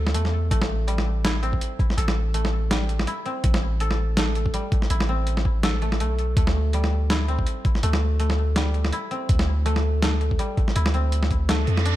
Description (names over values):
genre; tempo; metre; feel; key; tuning
half-time drum and bass; 164 BPM; 4/4; swing 56% on 16ths, half-time; A minor; A4 = 439 Hz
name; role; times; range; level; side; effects
koto; arpeggios; 0.0-12.0 s; G3 to A4; -29 LUFS; left 1 dB; ping-pong delay
long sustained 808-style bass; bass; 0.0-12.0 s; A1 to F2; -22 LUFS; equal; none
boom bap sampler-style drum kit; drums; 0.1-11.9 s; hi-hat, snare drum; -27 LUFS; equal; overdrive
electronic kick drum; drums; 0.5-11.4 s; none; -22 LUFS; equal; overdrive
reverse cymbal; sound effects; 11.6-12.0 s; none; -30 LUFS; right 7 dB; none
room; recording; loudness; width
light reverb, digital ambience; dark, warm production; -20 LUFS; side -14 dB against mid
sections
0.5-12.0 A section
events
drop 0.5-12.0; reverse cymbal 11.6-12.0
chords
0.0 D5; 0.5 Am; 6.4 D5